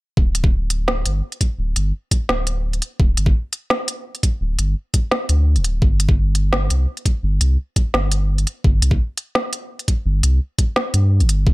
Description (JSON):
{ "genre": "half-time drum and bass", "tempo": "170 BPM", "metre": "4/4", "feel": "half-time", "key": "unclear", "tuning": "A4 = 440 Hz", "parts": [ { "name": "saturated sub bass", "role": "bass", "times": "0.2-11.5 s", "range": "D1 to G2", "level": "-17 LUFS", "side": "equal", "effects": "none" }, { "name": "electronic kick drum", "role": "drums", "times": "0.2-11.5 s", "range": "none", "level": "-16 LUFS", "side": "equal", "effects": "none" }, { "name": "organic electronic drum kit", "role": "drums", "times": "0.3-11.4 s", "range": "hi-hat, snare drum", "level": "-21 LUFS", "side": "equal", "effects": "none" } ], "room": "little or no reverb", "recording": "none", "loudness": "-17 LUFS", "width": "side -20 dB against mid", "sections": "0.2-11.5 A section", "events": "none", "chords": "none" }